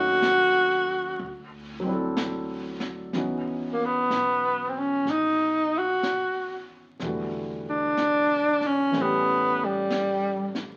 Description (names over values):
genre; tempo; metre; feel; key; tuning
jazz ballad; 62 BPM; 4/4; swing 67% on 8ths; C# minor; A4 = 440 Hz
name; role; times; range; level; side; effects
breathy tenor saxophone; melody; 0.0-10.6 s; G3 to F#4; -25 LUFS; equal; none
warm grand piano; accompaniment; 0.0-10.8 s; D3 to A4; -34 LUFS; equal; none
upright bass; bass; 0.0-10.8 s; E1 to D#2; -47 LUFS; equal; none
vintage brush drum kit; drums; 0.2-10.8 s; brushed snare drum, hi-hat, snare drum; -37 LUFS; equal; none
room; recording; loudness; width
wet studio reverb, RT60 0.8 s; very old 78 rpm record, vinyl crackle; -25 LUFS; mono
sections
0.0-3.1 A section; 3.1-10.8 B section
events
tenor saxophone solo 0.0-3.1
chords
0.0 D#m7b5; 1.2 D9; 3.1 C#m11; 7.0 Em11; 8.9 A7